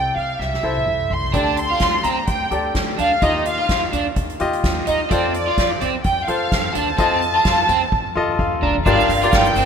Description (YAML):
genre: piano-driven pop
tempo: 128 BPM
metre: 4/4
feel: swing 56% on 16ths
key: unclear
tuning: A4 = 438 Hz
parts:
  - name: warm studio violin section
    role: melody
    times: 0.0-9.7 s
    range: D5 to C6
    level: -20 LUFS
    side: right 1 dB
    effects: none
  - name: clear concert grand piano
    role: accompaniment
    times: 0.0-9.7 s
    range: G2 to Bb5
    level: -23 LUFS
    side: left 4 dB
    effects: none
  - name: upright bass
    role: bass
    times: 0.0-9.7 s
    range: F1 to F2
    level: -28 LUFS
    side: equal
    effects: none
  - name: soft-mallet drum kit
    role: drums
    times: 0.4-9.7 s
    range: crash cymbal, hi-hat, kick drum, snare drum, toms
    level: -23 LUFS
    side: equal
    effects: none
  - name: crunchy overdriven guitar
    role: riff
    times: 1.3-9.7 s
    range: C4 to F4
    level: -22 LUFS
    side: right 3 dB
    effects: none
  - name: egg shaker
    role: percussion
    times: 8.9-9.7 s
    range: none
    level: -41 LUFS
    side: left 9 dB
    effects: none
room: moderate lush hall reverb, RT60 1.9 s, studio ambience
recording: rough home demo mix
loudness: -16 LUFS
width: side -7 dB against mid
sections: 0.0-8.9 A section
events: drum fill 0.4-1.3, 7.9-8.9; grand piano fill 8.2-8.9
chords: 0.0 C6; 1.3 Dsus4; 3.2 Ebadd9; 5.1 F; 8.9 Gm7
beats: 0.40 0.87 | 1.34 1.81 2.28 2.75 | 3.22 3.69 4.16 4.63 | 5.10 5.57 6.04 6.51 | 6.98 7.45 7.92 8.39 | 8.86 9.33